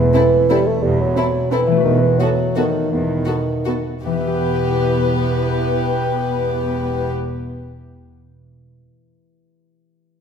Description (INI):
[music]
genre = classical, orchestral ballroom waltz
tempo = 148-191 BPM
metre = 3/4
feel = rubato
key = E minor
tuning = A4 = 440 Hz
[part]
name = mellow bassoon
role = accompaniment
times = 0.0-7.1 s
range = D#3 to A3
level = -20 LUFS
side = right 1 dB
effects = none
[part]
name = concert harp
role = arpeggios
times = 0.0-8.0 s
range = E3 to G5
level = -24 LUFS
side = left 9 dB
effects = none
[part]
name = dark chamber double bass section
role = bass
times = 0.0-7.1 s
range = E1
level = -22 LUFS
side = right 3 dB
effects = none
[part]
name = warm symphonic cello section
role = bass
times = 0.0-7.1 s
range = E2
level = -27 LUFS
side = right 2 dB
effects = none
[part]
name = dark studio violin section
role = melody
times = 0.1-7.1 s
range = A4 to B4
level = -28 LUFS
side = left 5 dB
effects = none
[part]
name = warm symphonic violin section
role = second line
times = 0.1-7.1 s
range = E4 to G4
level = -26 LUFS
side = left 4 dB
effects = none
[part]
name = dark symphonic viola section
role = accompaniment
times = 0.1-7.1 s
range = B3 to C4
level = -28 LUFS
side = right 1 dB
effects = none
[sound]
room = wet scoring stage reverb, RT60 1.7 s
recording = minimal, uncompressed stereo recording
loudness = -16 LUFS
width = side -7 dB against mid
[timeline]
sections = 0.0-4.1 A section; 4.1-6.4 B section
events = slowing down 1.3-4.1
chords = 0.0 Am/E; 1.8 B7/E; 4.1 Em